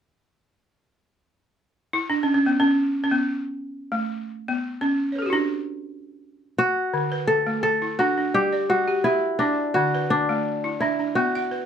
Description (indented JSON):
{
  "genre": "west african traditional, West African string and xylophone music",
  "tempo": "free time",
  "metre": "none",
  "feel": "none",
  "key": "D major",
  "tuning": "A4 = 441 Hz",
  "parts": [
    { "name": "balafon", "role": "arpeggios", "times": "1.9-11.7 s", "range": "D3 to F#5", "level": "-23 LUFS", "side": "right 1 dB", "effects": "none" },
    { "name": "kora", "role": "melody", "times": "6.6-11.7 s", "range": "D4 to A4", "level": "-21 LUFS", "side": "left 1 dB", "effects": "none" }
  ],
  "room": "light reverb",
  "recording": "close, detailed microphones",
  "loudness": "-21 LUFS",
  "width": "side -8 dB against mid",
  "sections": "1.3-6.9 A section; 6.9-11.7 B section",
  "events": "balafon solo 1.3-6.9",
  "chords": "1.3 D5; 8.3 G5; 9.8 D5"
}